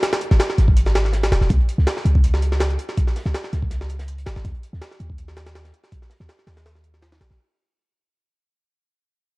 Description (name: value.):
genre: drum and bass, jungle.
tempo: 163 BPM.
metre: 4/4.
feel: swing 53% on 16ths.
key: unclear.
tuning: A4 = 440 Hz.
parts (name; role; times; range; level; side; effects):
crunchy breakbeat drum kit; drums; 0.0-7.3 s; hi-hat, snare drum; -41 LUFS; equal; none.
jungle sampler-style drum kit; drums; 0.0-7.4 s; hi-hat, kick drum, snare drum; -21 LUFS; equal; none.
warm 808-style bass; bass; 0.3-7.4 s; D#1 to D#2; -19 LUFS; equal; tube saturation.
room: little or no reverb.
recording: dark, warm production, vinyl crackle.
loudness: -17 LUFS.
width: side -24 dB against mid.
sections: 0.0-7.4 A section.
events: fade-out 0.0-7.4.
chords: none.